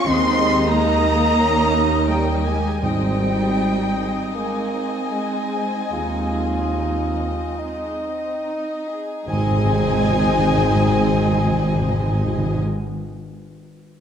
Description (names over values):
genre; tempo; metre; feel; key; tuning
classical, slow romantic movement for symphony orchestra; 34-46 BPM; 4/4; rubato; Ab major; A4 = 440 Hz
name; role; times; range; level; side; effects
warm symphonic violin section; melody; 0.0-12.6 s; G5 to C6; -27 LUFS; left 3 dB; none
rich chamber violin section; second line; 0.0-12.6 s; G3 to Eb5; -30 LUFS; left 4 dB; none
rich chamber viola section; accompaniment; 0.0-12.6 s; Ab3 to Eb4; -29 LUFS; right 3 dB; none
warm bassoon; accompaniment; 0.0-12.6 s; Ab3 to F4; -28 LUFS; equal; none
dark French horn section; sustained chords; 0.0-12.6 s; G3 to C4; -26 LUFS; left 3 dB; none
warm chamber cello section; bass; 0.0-12.6 s; G3 to C4; -28 LUFS; right 4 dB; none
small flute group; second line; 0.1-12.6 s; G5 to C6; -27 LUFS; equal; none
mellow tuba; bass; 0.1-12.6 s; Ab1 to Eb2; -26 LUFS; right 4 dB; none
rich chamber double bass section; bass; 0.1-12.6 s; Ab1 to Eb2; -26 LUFS; right 2 dB; none
timpani; percussion; 0.1-12.6 s; Ab2 to Eb3; -24 LUFS; left 2 dB; none
room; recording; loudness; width
wet scoring stage reverb, RT60 1.6 s; dark, warm production; -18 LUFS; side -8 dB against mid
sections
0.0-9.3 A section; 9.3-14.0 B section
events
slowing down 0.0-9.3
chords
0.1 Ab/Eb; 1.4 Eb; 2.8 Ab